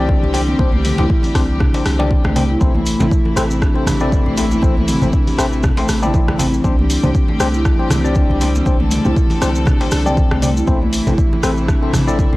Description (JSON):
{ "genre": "afro house", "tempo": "119 BPM", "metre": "4/4", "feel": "swing 56% on 16ths", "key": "A minor pentatonic", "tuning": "A4 = 440 Hz", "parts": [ { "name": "rich studio string section", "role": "sustained chords", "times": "0.0-12.4 s", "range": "C3 to A4", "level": "-26 LUFS", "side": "equal", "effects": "sidechain pumping" }, { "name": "tine electric piano", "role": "stabs", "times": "0.0-12.4 s", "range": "C4 to D5", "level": "-23 LUFS", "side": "left 2 dB", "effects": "overdrive, phaser, sidechain pumping, tape echo" }, { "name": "warm 808-style bass", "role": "bass", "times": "0.0-12.4 s", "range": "A1 to C2", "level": "-20 LUFS", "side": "equal", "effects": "sidechain pumping" }, { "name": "marimba with soft mallets", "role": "arpeggios", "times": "0.1-12.4 s", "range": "E3 to G4", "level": "-20 LUFS", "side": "equal", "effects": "sidechain pumping, tape echo" }, { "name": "deep house drum kit", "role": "drums", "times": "0.1-12.3 s", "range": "hi-hat, rim click, toms", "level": "-24 LUFS", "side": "equal", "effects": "none" }, { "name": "electronic kick drum", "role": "drums", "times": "0.1-12.3 s", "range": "none", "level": "-16 LUFS", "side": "equal", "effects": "none" }, { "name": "congas", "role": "percussion", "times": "0.2-12.4 s", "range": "none", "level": "-24 LUFS", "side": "right 1 dB", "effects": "none" }, { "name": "djembe", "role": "percussion", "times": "0.3-11.2 s", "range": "none", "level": "-25 LUFS", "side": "left 1 dB", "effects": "none" }, { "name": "maracas", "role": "percussion", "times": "2.6-12.3 s", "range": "none", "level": "-31 LUFS", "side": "right 1 dB", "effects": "none" } ], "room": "studio reverb", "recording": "dry, gritty hardware recording, lossy compression artefacts", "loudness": "-13 LUFS", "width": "side -19 dB against mid", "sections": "0.0-12.4 A section", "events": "none", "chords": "0.0 Csus2; 2.6 Am; 6.6 Csus2; 10.7 Am", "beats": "0.09 | 0.59 1.10 1.60 2.10 | 2.61 3.11 3.62 4.12 | 4.63 5.13 5.63 6.14 | 6.64 7.15 7.65 8.16 | 8.66 9.16 9.67 10.17 | 10.68 11.18 11.69 12.19" }